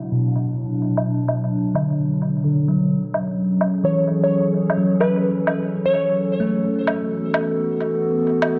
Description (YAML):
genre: future garage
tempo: 129 BPM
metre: 4/4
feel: swing 66% on 16ths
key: unclear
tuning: A4 = 440 Hz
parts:
  - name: warbly tape-like pad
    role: sustained chords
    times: 0.0-8.6 s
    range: B2 to A4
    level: -25 LUFS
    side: equal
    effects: chorus, built-in reverb, vintage 12-bit sampler grit
  - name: bell-like tine electric piano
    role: accompaniment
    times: 0.1-6.8 s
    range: B2 to A3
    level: -24 LUFS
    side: equal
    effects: dub echo
  - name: woodblock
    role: drums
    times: 1.0-8.5 s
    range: none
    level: -27 LUFS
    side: equal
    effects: overdrive, tape echo
  - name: glassy wavetable pluck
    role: melody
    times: 3.8-6.3 s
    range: B4 to C#5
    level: -25 LUFS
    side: equal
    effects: chorus, cassette tape, tape echo
room: moderate spring reverb, RT60 2.2 s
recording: echo-heavy mix, low-pass filter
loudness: -20 LUFS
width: mono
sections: 0.0-8.6 A section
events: filter sweep 0.0-8.6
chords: 0.0 Bm; 2.9 F#m; 6.6 Esus4